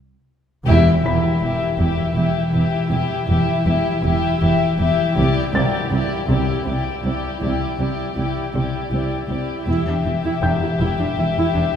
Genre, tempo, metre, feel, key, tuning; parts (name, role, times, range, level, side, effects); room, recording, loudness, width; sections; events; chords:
cinematic, suspense film score; 80 BPM; 3/4; straight; E minor; A4 = 441 Hz
warm chamber violin section; melody; 0.7-11.8 s; D5 to E5; -26 LUFS; left 6 dB
warm chamber violin section; second line; 0.7-11.8 s; G4; -26 LUFS; left 6 dB
warm chamber viola section; accompaniment; 0.7-11.6 s; D4 to E4; -27 LUFS; right 3 dB
warm chamber cello section; riff; 0.7-11.8 s; E2 to C4; -24 LUFS; equal
clear chamber double bass section; bass; 0.7-11.6 s; E1 to C2; -25 LUFS; right 1 dB
dark chamber cello section; bass; 0.7-11.8 s; C2 to E2; -22 LUFS; right 1 dB
felt-muted upright piano; texture; 1.1-11.8 s; G5 to B6; -30 LUFS; left 2 dB
wet scoring stage reverb, RT60 1.8 s; heard from further back in the room; -17 LUFS; side -8 dB against mid
0.7-11.8 A section
break 0.0-0.7; band accent 0.7-1.4
0.0 N.C.; 0.7 Em; 5.2 Cadd9; 9.7 Em